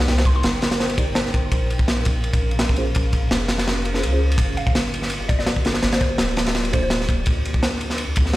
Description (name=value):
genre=drum and bass, jungle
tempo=167 BPM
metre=4/4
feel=swing 54% on 16ths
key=G minor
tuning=A4 = 442 Hz
part: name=ethereal airy pad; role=sustained chords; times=0.0-8.4 s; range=F3 to F5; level=-30 LUFS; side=right 1 dB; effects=ensemble chorus, built-in reverb, vintage 12-bit sampler grit
part: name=soft dub sub bass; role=bass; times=0.0-8.4 s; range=D1 to D2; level=-23 LUFS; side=equal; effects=tube saturation
part: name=crunchy breakbeat drum kit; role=drums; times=0.0-8.4 s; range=kick drum, ride cymbal, snare drum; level=-20 LUFS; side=equal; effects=none
part: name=mallet-like synth pluck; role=melody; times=0.3-0.9, 4.6-6.9 s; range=C5 to C6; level=-31 LUFS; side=left 1 dB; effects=chorus, cassette tape, dub echo
part: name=mellow tine electric piano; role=stabs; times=1.0-6.8 s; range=Bb3 to D5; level=-32 LUFS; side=equal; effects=slow stereo tremolo, dub echo
room=light reverb, studio ambience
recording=played on a big sound system in a bare room, large studio reverb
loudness=-18 LUFS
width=side -16 dB against mid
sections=0.0-8.4 A section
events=none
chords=0.0 Cm7; 1.5 Bbm7; 4.4 Gm7; 7.3 Dm7